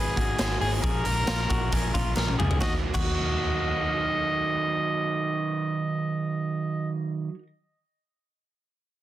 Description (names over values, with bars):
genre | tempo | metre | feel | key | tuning
jangly indie pop | 135 BPM | 4/4 | straight | Eb minor | A4 = 439 Hz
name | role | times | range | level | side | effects
clear trumpet | melody | 0.0-6.9 s | Ab4 to Eb5 | -30 LUFS | equal | none
raw garage guitar | accompaniment | 0.0-7.5 s | Ab2 to Bb4 | -30 LUFS | right 5 dB | overdrive
direct-recorded clean electric guitar | arpeggios | 0.0-3.9 s | F4 to Cb5 | -33 LUFS | left 5 dB | none
vintage muted fingered electric bass | bass | 0.0-7.3 s | Ab1 to Eb2 | -30 LUFS | equal | none
raw garage drum kit | drums | 0.2-3.1 s | crash cymbal, hi-hat, kick drum, snare drum, toms | -28 LUFS | equal | none
group handclap | percussion | 0.4-3.1 s | none | -40 LUFS | right 4 dB | none
room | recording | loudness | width
little or no reverb | dense, heavily limited modern master | -24 LUFS | side -13 dB against mid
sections
0.0-2.6 A section; 2.6-6.2 B section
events
drum fill 2.2-2.6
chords
0.0 Abm7; 0.8 Bbm7; 2.6 Ebm